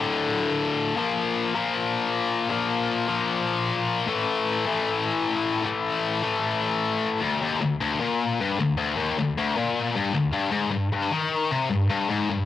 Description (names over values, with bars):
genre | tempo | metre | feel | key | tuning
metal | 154 BPM | 4/4 | straight | unclear | A4 = 440 Hz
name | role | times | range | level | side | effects
heavy high-gain guitar | solo | 0.0-12.5 s | D2 to Bb3 | -22 LUFS | left 4 dB | distortion
room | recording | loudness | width
light reverb | home recording on cassette | -22 LUFS | side -12 dB against mid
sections
0.0-7.2 A section; 7.2-12.5 B section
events
none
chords
0.0 D5; 1.0 Bb5; 4.1 A5; 7.2 Ebmaj7(no3)/D (rootless); 10.3 N.C.